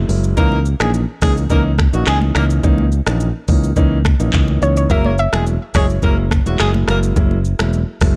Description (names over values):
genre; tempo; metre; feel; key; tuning
afrobeats; 106 BPM; 4/4; straight; C# dorian; A4 = 441 Hz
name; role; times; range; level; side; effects
dark grand piano; accompaniment; 0.0-8.2 s; E3 to E4; -24 LUFS; equal; none
modern bright fingered electric bass; bass; 0.0-8.2 s; E1 to C#2; -19 LUFS; equal; none
afro-pop drum kit; drums; 0.1-8.2 s; finger snaps, handclaps, hi-hat, kick drum, rim click, shaker; -19 LUFS; equal; none
mellow horn section; second line; 0.4-7.0 s; F#3 to A#4; -25 LUFS; equal; none
congas; percussion; 0.4-8.2 s; none; -29 LUFS; equal; none
soft round pluck; melody; 4.6-8.2 s; C#5 to E5; -23 LUFS; equal; chorus
room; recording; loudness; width
small room ambience; dark, warm production; -16 LUFS; mono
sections
0.0-8.2 A section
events
none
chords
0.4 C#m69; 4.9 F#9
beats
| 0.37 0.94 1.50 2.07 | 2.64 3.20 3.77 4.33 | 4.90 5.47 6.03 6.60 | 7.16 7.73